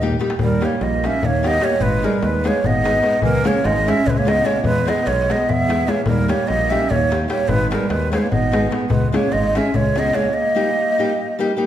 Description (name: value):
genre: balkan folk, Balkan wedding band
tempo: 296 BPM (eighths)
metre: 7/8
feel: straight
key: Eb phrygian dominant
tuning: A4 = 441 Hz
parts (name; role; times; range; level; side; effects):
- breathy ney; melody; 0.0-11.4 s; Bb4 to E5; -20 LUFS; right 1 dB; none
- dark clarinet; second line; 0.0-11.4 s; Fb3 to Db4; -24 LUFS; right 4 dB; none
- nylon-string guitar; accompaniment; 0.0-11.7 s; G3 to Ab4; -23 LUFS; left 2 dB; none
- fingered electric bass; bass; 0.0-10.1 s; Ab1 to E2; -23 LUFS; equal; none
- darbuka; percussion; 0.0-10.3 s; none; -24 LUFS; left 3 dB; none
room: wet recital hall reverb, RT60 1.4 s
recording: recorded in a church or concert hall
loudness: -16 LUFS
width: side -11 dB against mid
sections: 0.4-11.7 A section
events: drum fill 0.0-0.4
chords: 0.4 Eb; 1.8 Abm; 3.2 Dbm; 4.6 E; 6.1 Eb; 7.5 Abm; 8.9 Dbm; 10.3 Eb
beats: 0.19 | 0.39 0.59 0.80 1.00 1.20 1.40 1.60 | 1.81 2.01 2.21 2.41 2.62 2.82 3.02 | 3.22 3.42 3.63 3.83 4.03 4.24 4.44 | 4.64 4.84 5.05 5.25 5.45 5.66 5.86 | 6.06 6.26 6.47 6.67 6.87 7.08 7.28 | 7.48 7.69 7.89 8.09 8.30 8.50 8.70 | 8.91 9.11 9.31 9.52 9.72 9.92 10.13 | 10.33 10.53 10.74 10.94 11.14 11.35 11.55